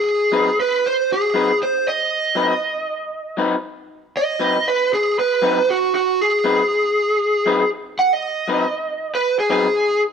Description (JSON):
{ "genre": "blues", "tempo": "118 BPM", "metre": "4/4", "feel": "swing 53% on 16ths", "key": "unclear", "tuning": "A4 = 440 Hz", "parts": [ { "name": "lead guitar through a small cranked amp", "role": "melody", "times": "0.0-10.0 s", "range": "Gb4 to Gb5", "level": "-17 LUFS", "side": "right 1 dB", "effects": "overdrive, slapback echo" }, { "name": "electric guitar through a small old amp", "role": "stabs", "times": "0.3-9.7 s", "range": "Gb3 to B4", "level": "-22 LUFS", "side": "left 4 dB", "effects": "none" } ], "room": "moderate echo chamber reverb, RT60 1.5 s", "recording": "none", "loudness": "-16 LUFS", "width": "side -6 dB against mid", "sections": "0.0-3.9 A section; 3.9-10.1 B section", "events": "lead electric guitar solo 3.9-10.1", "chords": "0.0 Ab7#9" }